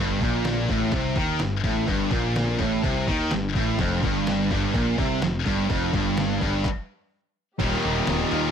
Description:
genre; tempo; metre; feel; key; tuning
heavy metal; 126 BPM; 4/4; straight; unclear; A4 = 440 Hz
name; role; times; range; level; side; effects
heavy high-gain guitar; riff; 0.0-8.5 s; Eb2 to Eb3; -28 LUFS; left 11 dB; distortion
sludgy distorted guitar; riff; 0.0-8.5 s; Eb2 to G4; -28 LUFS; equal; overdrive
tight distorted guitar; riff; 0.0-8.5 s; Eb2 to Eb3; -28 LUFS; right 10 dB; distortion
fuzz picked electric bass; bass; 0.0-8.5 s; Eb1 to Eb2; -28 LUFS; equal; overdrive
lo-fi sampler-style drum kit; drums; 0.2-8.4 s; crash cymbal, handclaps, hi-hat, kick drum, snare drum; -29 LUFS; equal; overdrive
rich studio string section; sustained chords; 7.6-8.5 s; G4 to Bb5; -35 LUFS; equal; none
room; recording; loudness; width
light reverb; dark, warm production; -21 LUFS; side -8 dB against mid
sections
0.0-7.6 A section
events
stop 6.7-7.6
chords
0.0 Gmadd9; 3.8 F5; 7.6 Eb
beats
0.46 0.93 1.41 | 1.89 2.36 2.84 3.32 | 3.79 4.27 4.75 5.22 | 5.70 6.18 6.65 7.13 | 7.61 8.08

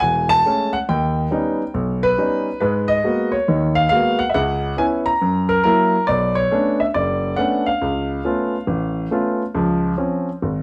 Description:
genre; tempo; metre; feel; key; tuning
jazz; 138 BPM; 4/4; swing 66% on 8ths; unclear; A4 = 440 Hz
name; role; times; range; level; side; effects
warm grand piano; solo; 0.0-10.6 s; E1 to A#5; -19 LUFS; equal; none
room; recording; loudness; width
moderate large studio reverb, RT60 1.0 s; none; -19 LUFS; mono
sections
0.0-9.5 A section; 9.5-10.6 B section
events
grand piano solo 9.5-10.6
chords
0.0 Amaj7; 0.9 D#aug7; 2.6 G#m9; 4.3 C#m7; 5.2 F#7; 6.1 Bm9; 7.8 C#aug7; 9.5 Dbmaj7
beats
0.01 0.44 | 0.88 1.31 1.74 2.17 | 2.61 3.04 3.48 3.91 | 4.34 4.78 5.21 5.64 | 6.08 6.51 6.94 7.38 | 7.81 8.25 8.68 9.11 | 9.55 9.98 10.42

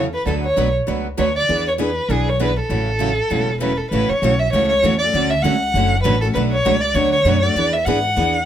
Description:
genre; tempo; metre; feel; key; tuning
acoustic string swing (jazz manouche); 197 BPM; 4/4; swing 58% on 8ths; A major; A4 = 440 Hz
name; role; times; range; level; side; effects
dark violin; melody; 0.0-8.5 s; G#4 to F#5; -18 LUFS; equal; none
picked steel-string acoustic guitar; accompaniment; 0.0-8.4 s; B2 to B4; -24 LUFS; left 4 dB; none
picked steel-string acoustic guitar; accompaniment; 0.0-8.4 s; B2 to B4; -25 LUFS; right 8 dB; none
upright bass; bass; 0.0-8.5 s; E1 to G#2; -22 LUFS; equal; none
room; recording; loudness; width
light reverb; none; -16 LUFS; side -10 dB against mid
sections
0.0-3.9 A section; 3.9-8.5 B section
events
none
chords
0.3 D6; 1.5 E7; 2.7 A6; 3.9 A69; 5.1 Dmaj7; 6.3 Bm7; 7.6 E7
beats
| 0.25 0.56 0.86 1.17 | 1.48 1.78 2.08 2.39 | 2.69 3.00 3.31 3.61 | 3.91 4.22 4.52 4.83 | 5.13 5.43 5.74 6.04 | 6.35 6.65 6.95 7.26 | 7.56 7.87 8.17

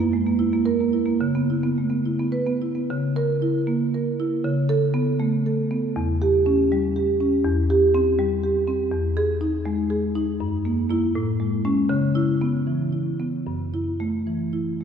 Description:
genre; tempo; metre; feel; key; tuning
classical, contemporary piece for solo marimba; 71-82 BPM (dotted quarters); 6/8; rubato; unclear; A4 = 442 Hz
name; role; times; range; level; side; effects
marimba with soft mallets; solo; 0.0-14.8 s; E2 to B4; -20 LUFS; right 1 dB; none
room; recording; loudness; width
wet church reverb, RT60 3.7 s; minimal, uncompressed stereo recording; -20 LUFS; side -7 dB against mid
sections
0.0-2.9 A section; 2.9-14.8 B section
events
none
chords
0.0 F#7; 1.2 C#m7; 2.9 C#m6; 4.4 Bsus2/C#; 6.0 Em6; 7.5 Em; 8.9 Emaj7; 10.4 F#7; 11.2 Amaj7; 11.9 C#m7; 13.5 F#m7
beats
0.39 | 1.21 2.05 | 2.88 3.67 | 4.45 5.21 | 5.97 6.72 | 7.46 8.19 | 8.93 9.66 | 10.40 11.16 | 11.91 12.67 | 13.47 14.27

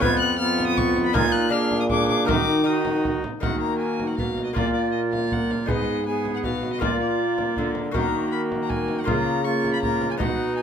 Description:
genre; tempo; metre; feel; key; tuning
classical, renaissance-style consort dance; 159 BPM; 3/4; straight; Eb minor; A4 = 439 Hz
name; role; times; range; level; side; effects
rich violin; melody; 0.0-10.6 s; D5 to Ab6; -29 LUFS; left 5 dB; none
tenor recorder; second line; 0.0-10.6 s; F4 to Ab4; -28 LUFS; right 6 dB; none
lute; accompaniment; 0.0-10.6 s; F2 to D#5; -29 LUFS; left 6 dB; none
warm viola; accompaniment; 0.0-10.6 s; Bb3 to D#4; -28 LUFS; left 2 dB; none
mellow trombone; bass; 0.0-10.6 s; F2 to Eb3; -27 LUFS; right 2 dB; none
frame drum; percussion; 0.0-10.4 s; none; -29 LUFS; right 2 dB; none
room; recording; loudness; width
moderate stone room reverb, RT60 0.9 s; none; -20 LUFS; side -8 dB against mid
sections
0.0-3.4 A section; 3.4-10.6 B section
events
none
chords
0.0 F(b5, no3); 1.1 Bb7sus4; 1.5 Bb7; 2.3 Ebm; 4.6 Bb5; 5.7 Abm; 6.8 Bb; 8.0 Ebm; 9.1 Bbm/Db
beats
| 0.02 0.40 0.77 | 1.15 1.52 1.90 | 2.29 2.67 3.05 | 3.44 3.81 4.19 | 4.57 4.95 5.32 | 5.70 6.07 6.45 | 6.82 7.20 7.57 | 7.95 8.33 8.70 | 9.08 9.45 9.83 | 10.21 10.58

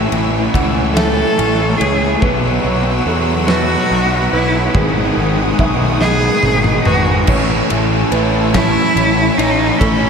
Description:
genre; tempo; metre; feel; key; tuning
post-rock; 48 BPM (dotted quarters); 6/8; straight; A lydian; A4 = 440 Hz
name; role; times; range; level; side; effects
rich studio string section; sustained chords; 0.0-10.1 s; B4 to E6; -25 LUFS; right 1 dB; none
twangy electric guitar; arpeggios; 0.0-7.3 s; G#2 to G#4; -24 LUFS; left 1 dB; spring reverb, diffuse ambient delay
fuzz guitar; riff; 0.0-10.1 s; G#2 to E4; -18 LUFS; equal; distortion
fuzz picked electric bass; bass; 0.0-10.1 s; G#1 to E2; -18 LUFS; equal; overdrive
big rock drum kit; drums; 0.1-10.0 s; crash cymbal, kick drum, ride cymbal, snare drum, toms; -20 LUFS; equal; none
felt-muted upright piano; arpeggios; 0.5-10.1 s; G#4 to F#5; -25 LUFS; right 4 dB; diffuse ambient delay
rich cello; melody; 0.9-10.1 s; C#4 to A4; -18 LUFS; right 1 dB; diffuse ambient delay
room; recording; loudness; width
wet church reverb, RT60 2.8 s; dreamy mix soaked in reverb; -12 LUFS; side -6 dB against mid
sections
0.0-7.3 A section; 7.3-10.1 B section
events
build-up 0.0-7.3; drum fill 6.0-7.3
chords
0.0 Amaj7; 2.2 B7sus4; 4.8 G#m7; 7.3 Amaj7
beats
0.96 | 2.23 3.49 | 4.76 6.02 | 7.29 8.55 | 9.81

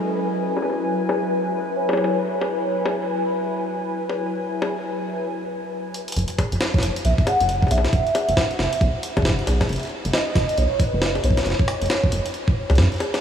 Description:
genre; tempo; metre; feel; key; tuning
IDM; 136 BPM; 4/4; swing 62% on 16ths; F# minor; A4 = 437 Hz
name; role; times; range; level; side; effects
warbly nostalgic lead; melody; 0.0-2.4, 6.6-12.6 s; A4 to F#5; -26 LUFS; equal; analog chorus, vintage 12-bit sampler grit, analog delay
hollow soft pad; sustained chords; 0.0-5.3 s; F#3 to G#5; -26 LUFS; equal; chorus, sidechain pumping
bubbling stepped-filter texture; texture; 0.0-5.3 s; B4; -32 LUFS; left 5 dB; chorus, built-in reverb
jungle sampler-style drum kit; drums; 0.6-13.2 s; bongos, hi-hat, snare drum; -26 LUFS; left 1 dB; low-pass filter on hats, small room ambience, low-pass filter on perc, low-pass filter on snare, analog delay
rubbery square bass; bass; 6.2-12.9 s; F#1 to F#2; -21 LUFS; equal; none
electronic kick drum; drums; 6.4-12.9 s; none; -21 LUFS; equal; small room ambience
room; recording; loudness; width
wet huge ambient reverb, RT60 7.9 s; dreamy mix soaked in reverb, studio ambience; -19 LUFS; side -8 dB against mid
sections
0.0-6.2 A section; 6.2-13.2 B section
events
filter sweep on drum 0.0-6.2; break 5.3-6.2; drum fill 5.9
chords
0.0 F#9sus4; 6.2 F#7sus4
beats
0.43 | 0.87 1.31 1.75 2.19 | 2.63 3.08 3.52 3.96 | 4.40 4.84 5.28 5.72 | 6.17 6.61 7.05 7.49 | 7.93 8.37 8.81 9.25 | 9.69 10.13 10.58 11.02 | 11.46 11.90 12.34 12.78

